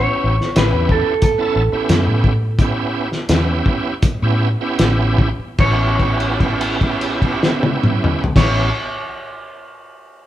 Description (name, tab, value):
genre	straight-eighth soul blues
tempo	74-92 BPM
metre	4/4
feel	straight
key	A mixolydian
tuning	A4 = 441 Hz
part	electric guitar through a small old amp	melody	0.0-8.7 s	A4 to C#5	-20 LUFS	right 1 dB	none
part	bright tonewheel organ	accompaniment	0.0-8.7 s	B3 to A4	-21 LUFS	right 3 dB	slow rotary speaker, overdrive, chorus vibrato
part	vintage muted fingered electric bass	bass	0.0-8.7 s	A1 to A2	-19 LUFS	equal	none
part	cloth-damped thuddy drum kit	drums	0.4-8.6 s	crash cymbal, hi-hat, kick drum, snare drum, toms	-17 LUFS	left 1 dB	none
room	moderate large studio reverb, RT60 1.4 s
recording	band playing live in one room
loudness	-14 LUFS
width	side -13 dB against mid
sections	0.0-5.6 A section; 5.6-8.8 B section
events	slowing down 0.0-5.6; held note 5.6-8.4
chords	0.0 A7; 5.6 A9